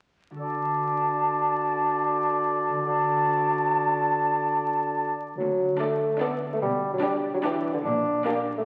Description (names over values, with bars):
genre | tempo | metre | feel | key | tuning
cinematic, playful, whimsical film cue | 145 BPM | 3/4 | straight | D major | A4 = 440 Hz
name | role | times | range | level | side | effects
concert harp | arpeggios | 0.3-8.7 s | Bb2 to D5 | -41 LUFS | equal | none
dark clarinet | second line | 0.4-5.1 s | F#4 | -35 LUFS | equal | none
mellow concert flute | second line | 0.4-5.1 s | A5 | -28 LUFS | equal | none
warm oboe | second line | 0.4-5.1 s | D5 | -32 LUFS | equal | none
mellow bassoon | accompaniment | 0.4-8.6 s | D3 to D4 | -30 LUFS | equal | none
clear studio cello section | bass | 5.4-8.2 s | D2 to B2 | -39 LUFS | equal | none
dark studio double bass section | bass | 5.4-8.2 s | Bb1 to D2 | -45 LUFS | equal | none
rich studio violin section | melody | 5.8-8.6 s | D5 | -40 LUFS | equal | none
rich studio violin section | second line | 5.8-8.6 s | G4 to A4 | -40 LUFS | equal | none
rich studio viola section | accompaniment | 5.8-8.6 s | D4 | -35 LUFS | equal | none
room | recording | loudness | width
wet scoring stage reverb, RT60 1.7 s | very old 78 rpm record, vinyl crackle | -25 LUFS | mono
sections
0.4-5.4 A section; 5.4-8.7 B section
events
none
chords
0.4 D; 6.6 G/B; 7.8 Gm/Bb